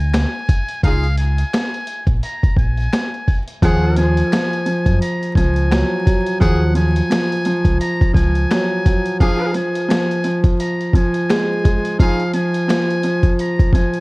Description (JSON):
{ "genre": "hip hop, boom-bap hip-hop", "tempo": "86 BPM", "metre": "4/4", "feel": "swing 57% on 16ths", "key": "Eb minor", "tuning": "A4 = 440 Hz", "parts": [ { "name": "trumpet with metal mute", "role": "melody", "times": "0.0-14.0 s", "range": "F5 to Bb5", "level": "-25 LUFS", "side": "equal", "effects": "high-pass filter, low-pass filter" }, { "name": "deep dub fingered electric bass", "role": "bass", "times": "0.0-8.4 s", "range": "Bb1 to Gb2", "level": "-17 LUFS", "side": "equal", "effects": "transformer saturation" }, { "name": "boom bap sampler-style drum kit", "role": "drums", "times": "0.1-14.0 s", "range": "hi-hat, kick drum, snare drum", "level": "-17 LUFS", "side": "equal", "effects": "none" }, { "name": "finger snap", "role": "percussion", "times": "0.1-12.9 s", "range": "none", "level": "-38 LUFS", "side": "left 4 dB", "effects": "none" }, { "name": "warm horn section", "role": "stabs", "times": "0.8-12.2 s", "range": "F3 to Ab4", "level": "-26 LUFS", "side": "left 1 dB", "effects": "high-pass filter, low-pass filter, tape echo" }, { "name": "warm grand piano", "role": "accompaniment", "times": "3.6-14.0 s", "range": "F3 to Ab3", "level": "-18 LUFS", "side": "equal", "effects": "cassette tape, high-pass filter, low-pass filter" } ], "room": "studio reverb", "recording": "worn, warbling old tape, cassette tape, vinyl crackle, warbly pitch drift", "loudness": "-15 LUFS", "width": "side -24 dB against mid", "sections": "0.0-3.6 A section; 3.6-14.0 A section", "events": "break 0.0-3.6", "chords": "0.0 D(b5, no3); 0.8 Db69; 3.6 Ebm11; 9.2 Fm" }